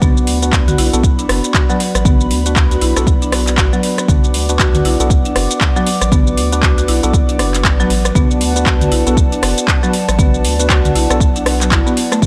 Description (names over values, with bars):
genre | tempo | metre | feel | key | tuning
afro house | 118 BPM | 4/4 | swing 59% on 16ths | B minor | A4 = 442 Hz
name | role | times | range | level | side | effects
dark analog pad | sustained chords | 0.0-12.3 s | B4 to D6 | -25 LUFS | equal | lush chorus, sidechain pumping
buzzing marimba with medium hard mallets | arpeggios | 0.0-12.3 s | F#3 to F#4 | -23 LUFS | equal | sidechain pumping
bright tine electric piano | stabs | 0.0-12.3 s | B3 to B4 | -24 LUFS | equal | sidechain pumping, digital delay
round analog bass | bass | 0.0-12.3 s | F#1 to D2 | -20 LUFS | equal | sidechain pumping
afro-pop drum kit | drums | 0.0-12.3 s | handclaps, hi-hat, rim click, shaker, toms | -20 LUFS | equal | none
electronic kick drum | drums | 0.0-12.3 s | none | -16 LUFS | equal | none
room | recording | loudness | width
little or no reverb | none | -14 LUFS | mono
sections
0.0-12.3 A section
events
none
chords
0.0 Bm